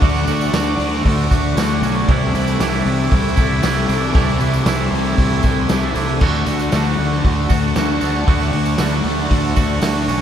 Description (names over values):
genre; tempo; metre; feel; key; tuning
rock, shoegaze and dream pop; 116 BPM; 4/4; straight; D major; A4 = 440 Hz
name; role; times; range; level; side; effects
phased string machine; sustained chords; 0.0-10.2 s; A4 to D6; -28 LUFS; equal; ensemble chorus, phaser
thick fuzz guitar; riff; 0.0-10.2 s; C3 to D4; -21 LUFS; left 6 dB; distortion, analog chorus
twangy electric guitar; riff; 0.0-10.2 s; C3 to F#4; -21 LUFS; right 7 dB; reverse reverb
fuzz fingered electric bass; bass; 0.0-10.2 s; B1 to D2; -21 LUFS; equal; overdrive
raw garage drum kit; drums; 0.0-10.2 s; crash cymbal, hi-hat, kick drum, snare drum; -19 LUFS; equal; none
tambourine; percussion; 0.1-10.2 s; none; -38 LUFS; right 10 dB; none
room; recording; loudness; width
moderate lush hall reverb, RT60 1.8 s, small room ambience; dreamy mix soaked in reverb; -14 LUFS; side -9 dB against mid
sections
0.0-10.2 A section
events
none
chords
0.0 D; 2.1 C69; 6.2 D